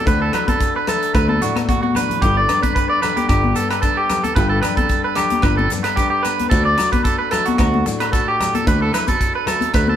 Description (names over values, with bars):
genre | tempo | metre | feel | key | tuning
highlife guitar band | 112 BPM | 4/4 | swing 54% on 16ths | G major | A4 = 440 Hz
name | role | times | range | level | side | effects
flamenco guitar | accompaniment | 0.0-10.0 s | G2 to G4 | -25 LUFS | left 6 dB | none
electric guitar at the edge of break-up | arpeggios | 0.0-10.0 s | F#4 to D5 | -19 LUFS | right 2 dB | spring reverb
fingered electric bass | bass | 0.1-10.0 s | G1 to D2 | -19 LUFS | equal | none
tight funk drum kit | drums | 0.1-9.9 s | hi-hat, kick drum, rim click | -22 LUFS | equal | none
maracas | percussion | 0.1-9.9 s | none | -34 LUFS | left 4 dB | none
agogo bells | percussion | 0.3-9.9 s | none | -31 LUFS | left 6 dB | none
congas | percussion | 0.3-10.0 s | none | -25 LUFS | left 4 dB | none
room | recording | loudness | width
moderate stone room reverb, RT60 1.0 s | band playing live in one room | -15 LUFS | side -10 dB against mid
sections
0.0-10.0 A section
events
drum fill 1.5-2.2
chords
0.0 D; 2.2 G; 6.5 D